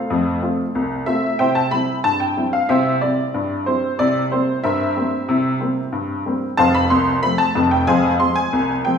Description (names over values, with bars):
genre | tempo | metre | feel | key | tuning
ragtime piano | 93 BPM | 2/4 | straight | C major | A4 = 440 Hz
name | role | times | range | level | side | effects
honky-tonk upright piano | solo | 0.0-9.0 s | F1 to C6 | -16 LUFS | left 1 dB | none
room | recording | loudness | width
wet recital hall reverb, RT60 1.7 s | recorded in a church or concert hall, small room ambience | -16 LUFS | side -7 dB against mid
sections
0.0-9.0 A section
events
none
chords
0.0 F; 1.4 C; 4.0 C7; 6.6 F; 7.9 Fm